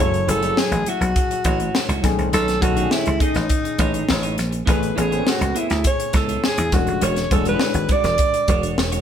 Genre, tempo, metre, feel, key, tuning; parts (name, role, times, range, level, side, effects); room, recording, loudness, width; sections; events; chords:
polished 1980s jazz-funk pop; 102 BPM; 4/4; straight; F# minor; A4 = 438 Hz
breathy alto saxophone; melody; 0.0-8.8 s; D#4 to D5; -23 LUFS; right 1 dB
warm baby grand piano; accompaniment; 0.0-9.0 s; C#3 to A4; -26 LUFS; left 4 dB
clean electric guitar; riff; 0.0-9.0 s; G#3 to E5; -28 LUFS; right 4 dB
dry thumbed slap bass; bass; 0.0-9.0 s; E1 to E2; -23 LUFS; equal
crisp fusion drum kit; drums; 0.1-9.0 s; hi-hat, kick drum, snare drum; -22 LUFS; equal
light reverb; band playing live in one room; -17 LUFS; side -9 dB against mid
0.0-9.0 A section
0.0 F#m7; 2.0 B13; 4.7 Amaj9; 6.7 E13